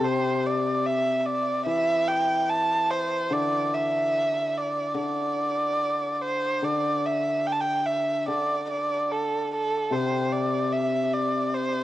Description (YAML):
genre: chinese traditional, Chinese chamber ensemble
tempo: 73 BPM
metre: 4/4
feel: straight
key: D shang mode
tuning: A4 = 440 Hz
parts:
  - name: warm erhu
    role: melody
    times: 0.0-11.8 s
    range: A4 to A5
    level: -24 LUFS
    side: right 2 dB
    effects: none
  - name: hammered dulcimer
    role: accompaniment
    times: 0.0-11.8 s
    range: C3 to E3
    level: -29 LUFS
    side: left 4 dB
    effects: none
room: light reverb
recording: worn, warbling old tape, cassette tape, warbly pitch drift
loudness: -23 LUFS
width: side -14 dB against mid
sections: 0.0-11.8 A section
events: none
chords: none